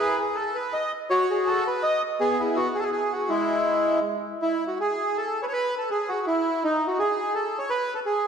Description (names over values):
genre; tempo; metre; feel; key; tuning
musette; 164 BPM; 3/4; swing 55% on 8ths, rubato; E major; A4 = 440 Hz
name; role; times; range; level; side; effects
bandoneon; solo; 0.0-8.3 s; G#3 to D#5; -22 LUFS; equal; none
room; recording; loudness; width
wet concert hall reverb, RT60 2.2 s; heard from further back in the room; -23 LUFS; side -7 dB against mid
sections
0.0-4.4 A section; 4.4-8.3 B section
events
none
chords
0.0 N.C.; 2.2 E; 4.4 N.C.